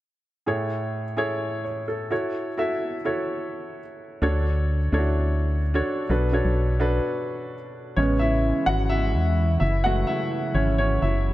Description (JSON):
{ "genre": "pop", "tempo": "128 BPM", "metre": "4/4", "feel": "straight", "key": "A major", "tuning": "A4 = 440 Hz", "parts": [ { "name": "warm upright piano", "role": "accompaniment", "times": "0.5-11.3 s", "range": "A2 to F#5", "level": "-25 LUFS", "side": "equal", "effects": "none" }, { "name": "organ-like FM bass", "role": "bass", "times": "4.2-11.3 s", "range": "F#1 to E2", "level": "-22 LUFS", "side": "equal", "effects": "none" }, { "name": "lush unison pad", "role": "sustained chords", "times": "8.0-11.3 s", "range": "C#3 to E4", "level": "-30 LUFS", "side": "equal", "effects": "chorus, phaser" } ], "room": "light reverb, studio reverb", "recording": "none", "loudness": "-22 LUFS", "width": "side -15 dB against mid", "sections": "0.5-8.0 A section; 8.0-11.3 B section", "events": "break 7.0-8.0; upright piano solo 8.0-11.3", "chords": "0.5 Amaj7; 2.1 F#m7; 4.2 Dmaj7; 6.1 Bm7; 8.0 Amaj7; 9.6 F#m7" }